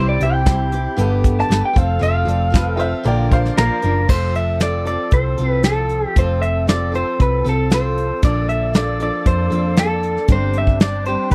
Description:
folk rock and heartland rock; 116 BPM; 4/4; straight; A4 = 440 Hz
electric guitar through a small old amp; melody; 0.0-11.3 s; A4 to A5; -24 LUFS; equal
picked steel-string acoustic guitar; accompaniment; 0.0-11.3 s; G2 to Bb4; -27 LUFS; equal
warm upright piano; accompaniment; 0.0-3.9 s; E4 to F5; -32 LUFS; equal
musette accordion; sustained chords; 0.0-11.3 s; F3 to D5; -34 LUFS; equal
hollow-body short-scale picked electric bass; bass; 0.0-11.3 s; F1 to F2; -22 LUFS; equal
soft brush drum kit; drums; 0.2-11.3 s; crash cymbal, hi-hat, kick drum, snare drum; -18 LUFS; equal
clear upright piano; second line; 2.8-4.0 s; C5 to G5; -26 LUFS; equal
little or no reverb; dry, close 1970s-style studio recording; -18 LUFS; mono
0.0-4.1 A section; 4.1-11.3 B section
clean electric guitar solo 0.0-4.1
0.0 C; 1.0 Gadd9; 1.8 F; 3.1 Bb; 4.1 F; 8.2 Bbmaj7; 10.3 Gsus4

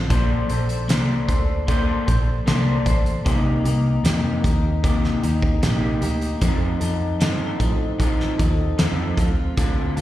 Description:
indie pop, bedroom pop; 76 BPM; 4/4; straight; Bb major; A4 = 440 Hz
electric guitar at the edge of break-up; accompaniment; 0.0-10.0 s; C3 to C5; -23 LUFS; left 2 dB; wide subtle chorus, vibrato effect, plate reverb, slapback echo
vintage muted fingered electric bass; bass; 0.0-10.0 s; A1 to A2; -22 LUFS; equal
loose indie drum kit; drums; 0.1-10.0 s; hi-hat, kick drum, snare drum; -23 LUFS; equal
light reverb; live gig heard through the venue's PA, recital hall reverb; -18 LUFS; side -14 dB against mid
0.0-10.0 A section
0.1 Bbmaj9; 3.3 Cm7; 6.4 F7; 9.2 Dm7

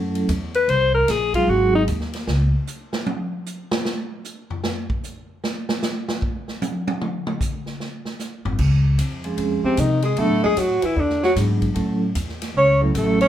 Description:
jazz, small-group swing and bop; 152 BPM; 4/4; swing 65% on 8ths; A4 = 440 Hz
vibraphone with medium mallets; accompaniment; 0.0-1.9, 9.2-13.3 s; F3 to A4; -22 LUFS; right 2 dB
upright bass; bass; 0.0-2.5, 8.5-13.3 s; Ab1 to C3; -22 LUFS; equal
swinging big-band drum kit; drums; 0.2-13.3 s; crash cymbal, hi-hat, kick drum, ride cymbal, snare drum, toms; -27 LUFS; right 1 dB
warm alto saxophone; melody; 0.6-1.8, 9.7-13.3 s; C4 to C#5; -18 LUFS; left 1 dB
breathy tenor saxophone; second line; 9.6-13.3 s; C3 to C#4; -24 LUFS; right 3 dB
moderate studio ambience, RT60 0.5 s; heard from further back in the room; -19 LUFS; side -11 dB against mid
0.0-8.6 A section; 8.6-13.3 B section
alto saxophone solo 0.0-8.6; drum solo 2.3-8.6
0.0 A6; 0.7 Ab7; 2.3 N.C.; 8.6 Dbmaj7; 10.2 Cbm7; 11.0 E9; 11.8 A6

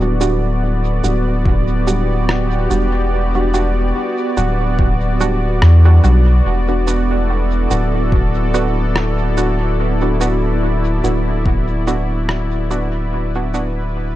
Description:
ambient dub; 72 BPM; 4/4; swing 55% on 16ths; E minor; A4 = 440 Hz
warm analog pad; sustained chords; 0.0-14.2 s; B3 to D5; -21 LUFS; equal; chorus
filtered dub chord stab; stabs; 0.0-13.8 s; G3 to F#4; -22 LUFS; right 3 dB; chorus, dub echo
soft dub sub bass; bass; 0.0-14.2 s; D1 to E2; -15 LUFS; equal
electronic shaker and rim click; drums; 0.2-13.7 s; -25 LUFS; equal; dub echo
electronic kick drum; drums; 1.5-11.6 s; -17 LUFS; equal
digital ambience; -14 LUFS; side -14 dB against mid
0.0-14.2 A section
fade-out 10.9-14.2
0.0 Em7; 6.5 Bm

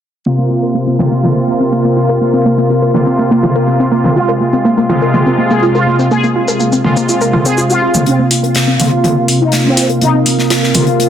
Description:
melodic techno; 123 BPM; 4/4; straight; A4 = 440 Hz
warbly dusty pluck; arpeggios; 0.3-11.1 s; Bb3 to Bb4; -16 LUFS; equal; chorus, digital delay
analog synth brass; stabs; 0.3-11.1 s; C3 to F4; -13 LUFS; equal; chorus, digital delay
techno drum kit; drums; 0.3-10.8 s; hi-hat, shaker, toms; -16 LUFS; equal
warbly tape-like pad; texture; 0.3-11.1 s; C4 to F5; -20 LUFS; equal; chorus, built-in reverb
resonant sweep polysynth; melody; 4.2-10.2 s; C4 to Ab4; -17 LUFS; equal; chorus, cassette tape, digital delay
gated 80s drum kit; drums; 8.1-11.1 s; hi-hat, snare drum; -18 LUFS; left 2 dB; high-pass filter on hats, high-pass filter on snare, high-pass filter on room
moderate lush hall reverb, RT60 2.2 s; dense, heavily limited modern master, low-pass filter; -10 LUFS; side -9 dB against mid
0.3-8.1 A section; 8.1-11.1 B section
filter sweep on synth arpeggio sound 0.3-8.1, 8.1-11.1; filter sweep 0.3-8.1; build-up 8.1-11.1; filter sweep on analog polysynth 8.1-11.1
0.3 Bbsus2; 4.2 Fm

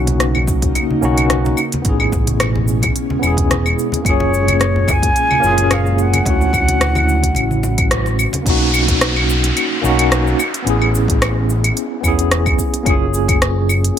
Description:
sunset chillout; 109 BPM; 4/4; swing 54% on 16ths; A4 = 440 Hz
bright tine electric piano; accompaniment; 0.0-14.0 s; A3 to G#4; -19 LUFS; equal; medium stereo tremolo, auto-pan, low-pass filter, tape echo
ethereal airy pad; sustained chords; 0.0-8.4 s; A#2 to E#4; -25 LUFS; equal; ensemble chorus, built-in reverb
overdriven fingered electric bass; bass; 0.0-13.9 s; E1 to D2; -18 LUFS; equal
deep house drum kit; drums; 0.1-13.9 s; cabasa, claves, hi-hat, rim click; -19 LUFS; equal
congas; percussion; 0.1-8.4 s; -26 LUFS; left 1 dB
electronic kick drum; drums; 0.5-13.4 s; -19 LUFS; equal
mellow concert flute; melody; 4.1-7.9 s; C#5 to G#5; -19 LUFS; left 1 dB; tape echo
downlifter; sound effects; 8.5-12.9 s; -22 LUFS; equal
light reverb, digital ambience; -13 LUFS; side -9 dB against mid
0.0-8.5 A section; 8.5-14.0 B section
filter sweep on tine electric piano 0.0-8.5; band accent 7.9
0.0 Bmaj9; 1.6 Amaj9; 4.1 F#maj9; 6.3 Dmaj9; 8.5 Bmaj9; 10.4 Amaj9; 12.9 F#maj9

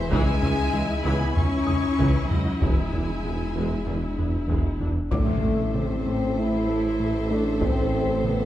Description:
cinematic, hybrid orchestral and electronic film score; 96 BPM; 4/4; straight; A minor from 5.1 s; A4 = 439 Hz
clear symphonic violin section; melody; 0.0-8.5 s; E5 to C#6; -37 LUFS; left 4 dB
clear symphonic violin section; second line; 0.0-8.5 s; C5 to G#5; -38 LUFS; left 2 dB
warm symphonic viola section; accompaniment; 0.0-8.5 s; E3 to A4; -33 LUFS; equal
mellow French horn section; sustained chords; 0.0-8.5 s; E3 to E4; -28 LUFS; left 2 dB
punchy sub bass; bass; 0.0-8.5 s; E1 to C#2; -32 LUFS; equal
rich symphonic cello section; bass; 0.0-8.5 s; A2 to C#4; -36 LUFS; right 2 dB
dark grand piano; texture; 0.0-8.5 s; D5 to E6; -43 LUFS; left 3 dB
harp-like synth pluck; arpeggios; 0.1-8.1 s; C#3 to E4; -32 LUFS; left 3 dB; chorus
smooth synth bass; riff; 0.1-8.4 s; C#2 to A3; -30 LUFS; right 2 dB
clear symphonic double bass section; bass; 0.1-8.5 s; A1 to E2; -33 LUFS; right 2 dB
mellow tuba; bass; 0.1-8.5 s; E1 to C#2; -32 LUFS; right 3 dB
taiko ensemble; drums; 0.1-8.5 s; -28 LUFS; equal
impact; sound effects; 5.1-7.6 s; -30 LUFS; equal
wet recital hall reverb, RT60 1.3 s; recorded in a church or concert hall; -21 LUFS; side -13 dB against mid
0.0-5.1 A section; 5.1-8.5 B section
impact 5.1-7.6
0.1 C#m; 2.6 E7; 5.1 Am

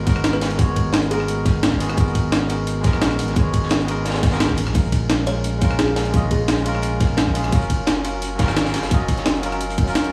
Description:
liquid drum and bass; 173 BPM; 4/4; straight; G# dorian; A4 = 440 Hz
bell-like tine electric piano; accompaniment; 0.0-10.1 s; F#3 to D#5; -27 LUFS; equal
warm sub bass; bass; 0.0-10.0 s; F#1 to A#1; -26 LUFS; equal
breakbeat sampler-style drum kit; drums; 0.1-10.1 s; hi-hat, ride cymbal, rim click, snare drum; -26 LUFS; equal
crunchy breakbeat drum kit; drums; 0.1-10.1 s; hi-hat, snare drum; -32 LUFS; equal; high-pass filter on hats, high-pass filter on snare, high-pass filter on room
electronic kick drum; drums; 0.1-9.9 s; -21 LUFS; equal; overdrive
kalimba; melody; 0.3-1.4, 5.3-6.8 s; G#4 to C#5; -31 LUFS; equal; digital delay
light reverb, small room ambience; played on a big sound system in a bare room, stone room reverb; -20 LUFS; mono
0.0-10.1 A section
0.0 G#m9; 4.6 A#m7; 7.5 F#maj7

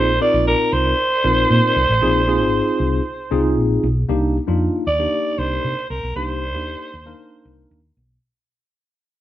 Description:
early-eighties boogie funk; 116 BPM; 4/4; straight; C minor; A4 = 440 Hz
growling alto saxophone; melody; 0.0-7.7 s; Bb4 to D5; -19 LUFS; right 1 dB
tine electric piano; accompaniment; 0.0-7.8 s; Bb3 to Bb4; -21 LUFS; left 1 dB; medium stereo tremolo
hollow-body short-scale fingered electric bass; bass; 0.0-8.2 s; Ab1 to C3; -21 LUFS; equal
wet stone room reverb, RT60 1.0 s; band playing live in one room; -16 LUFS; side -13 dB against mid
0.0-4.1 A section; 4.1-8.2 B section
fade-out 4.1-8.2
0.0 Bb9sus4; 4.1 Cm7

